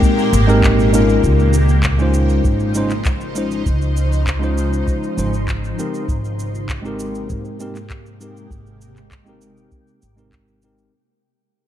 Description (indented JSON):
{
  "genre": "sunset chillout",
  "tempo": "99 BPM",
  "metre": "4/4",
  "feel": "straight",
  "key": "Db lydian",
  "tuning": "A4 = 438 Hz",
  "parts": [
    { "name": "tine electric piano", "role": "accompaniment", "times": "0.0-10.9 s", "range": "Ab3 to C5", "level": "-20 LUFS", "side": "left 1 dB", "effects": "auto-pan, tape echo" },
    { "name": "shimmering ambient pad", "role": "sustained chords", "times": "0.0-10.9 s", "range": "Bb2 to C5", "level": "-23 LUFS", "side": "right 1 dB", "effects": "chorus, built-in reverb, phaser" },
    { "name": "electronic kick drum", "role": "drums", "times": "0.0-10.4 s", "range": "none", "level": "-19 LUFS", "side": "equal", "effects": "small room ambience" },
    { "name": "smooth R&B drum kit", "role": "drums", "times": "0.0-10.9 s", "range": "cabasa, handclaps, hi-hat", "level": "-28 LUFS", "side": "equal", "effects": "small room ambience" },
    { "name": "upright bass", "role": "bass", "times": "0.3-10.9 s", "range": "Ab1 to Ab2", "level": "-18 LUFS", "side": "equal", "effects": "none" }
  ],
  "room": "light reverb, digital ambience",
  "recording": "dark, warm production",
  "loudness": "-15 LUFS",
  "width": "side -11 dB against mid",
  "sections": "0.0-1.2 A section; 1.2-10.9 B section",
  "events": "fade-out 1.2-10.9; filter sweep on ambient pad 1.2-10.9",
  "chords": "0.0 Abmaj9; 1.2 Dbmaj9; 5.8 Abmaj9"
}